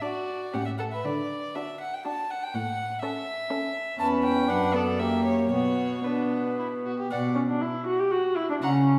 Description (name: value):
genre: quick classical-period movement for string quartet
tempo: 112-126 BPM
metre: 3/4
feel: rubato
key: B minor from 4.0 s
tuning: A4 = 440 Hz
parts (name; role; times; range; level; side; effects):
- warm violin; melody; 0.0-8.9 s; B4 to A#5; -34 LUFS; equal; none
- warm violin; second line; 0.0-8.9 s; D4 to F#5; -35 LUFS; equal; none
- warm viola; accompaniment; 0.0-9.0 s; A#3 to G4; -30 LUFS; equal; none
- rich cello; bass; 0.5-9.0 s; E2 to D3; -32 LUFS; equal; none
room: wet recital hall reverb, RT60 1.3 s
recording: heard from further back in the room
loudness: -27 LUFS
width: mono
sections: 0.0-7.1 A section; 7.1-9.0 B section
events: none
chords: 0.0 D; 0.5 A; 1.0 D; 2.5 A; 4.0 C#m7b5/E; 4.5 Bm/F#; 5.0 F#7b9; 5.5 Bm